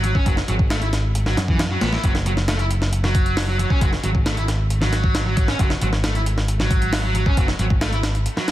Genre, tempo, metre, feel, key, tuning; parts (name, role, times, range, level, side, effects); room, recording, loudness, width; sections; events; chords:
breakbeat, breaks; 135 BPM; 4/4; straight; A4 = 440 Hz
sludgy distorted guitar; riff; 0.0-8.5 s; E3 to E4; -24 LUFS; right 1 dB; overdrive, dub echo
picked electric bass; bass; 0.0-8.3 s; F#1 to F#2; -21 LUFS; equal; tube saturation
breakbeat sampler-style drum kit; drums; 0.0-8.5 s; hi-hat, kick drum, snare drum; -21 LUFS; equal
little or no reverb; dense, heavily limited modern master, vinyl crackle; -18 LUFS; side -14 dB against mid
0.0-8.5 A section